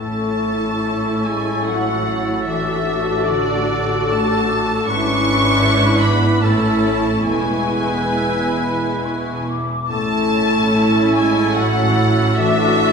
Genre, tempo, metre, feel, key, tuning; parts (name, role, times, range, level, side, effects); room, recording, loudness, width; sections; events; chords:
classical, slow romantic movement for symphony orchestra; 65-84 BPM; 3/4; rubato; A major; A4 = 438 Hz
warm studio violin section; melody; 0.0-12.9 s; D5 to C#6; -24 LUFS; left 2 dB
mellow hollow small flute group; second line; 0.0-12.9 s; B5 to E6; -27 LUFS; left 1 dB
warm clarinet; second line; 0.0-12.9 s; E4 to F#4; -26 LUFS; right 3 dB
warm oboe; second line; 0.0-12.9 s; A4 to B4; -27 LUFS; right 1 dB
warm studio violin section; second line; 0.0-12.9 s; D5 to C#6; -27 LUFS; left 1 dB
rich studio viola section; accompaniment; 0.0-12.9 s; B3 to F#4; -24 LUFS; right 2 dB
mellow French horn section; sustained chords; 0.0-12.9 s; D3 to C#4; -23 LUFS; left 2 dB
concert harp; arpeggios; 0.0-12.9 s; E2 to F#5; -25 LUFS; left 4 dB
rich studio cello section; bass; 0.0-12.9 s; E2 to A2; -24 LUFS; right 2 dB
rich studio double bass section; bass; 0.0-12.9 s; E1 to A1; -27 LUFS; right 2 dB
wet recital hall reverb, RT60 1.5 s; recorded in a church or concert hall; -15 LUFS; side -5 dB against mid
0.0-12.9 A section
0.0 A; 2.5 D/A; 4.9 E7/G#; 6.4 A; 7.3 E; 9.9 A; 12.4 D/A